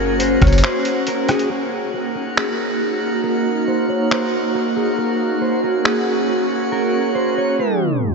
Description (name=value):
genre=hip hop, atmospheric cloud-rap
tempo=138 BPM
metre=4/4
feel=half-time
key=Eb dorian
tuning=A4 = 438 Hz
part: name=mellow electric guitar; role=melody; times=0.0-8.1 s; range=Ab4 to Db5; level=-23 LUFS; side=left 1 dB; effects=spring reverb, low-pass filter, tape echo
part: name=ethereal airy pad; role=sustained chords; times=0.0-8.1 s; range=Bb3 to Gb4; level=-19 LUFS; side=right 2 dB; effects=ensemble chorus, built-in reverb, sidechain pumping, low-pass filter
part: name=soft 808-style bass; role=bass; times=0.0-0.6 s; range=Gb1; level=-18 LUFS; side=equal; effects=none
part: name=drifting glass-harmonics texture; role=texture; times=0.0-8.1 s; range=Db4 to Gb5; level=-26 LUFS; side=equal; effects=chorus, built-in reverb
part: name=trip hop sampler-style drum kit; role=drums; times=0.2-6.0 s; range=finger snaps, hi-hat, kick drum, rim click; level=-24 LUFS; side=equal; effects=none
room=wet huge ambient reverb, RT60 7.2 s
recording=dreamy mix soaked in reverb, tape stop, nothing above 7.9 kHz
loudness=-16 LUFS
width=side -4 dB against mid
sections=0.0-1.5 A section; 1.5-8.1 B section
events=break 0.6-1.5; drums muted 7.6-8.1; tape stop 7.6-8.1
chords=0.0 Gb; 1.5 Ebm; 5.0 Gb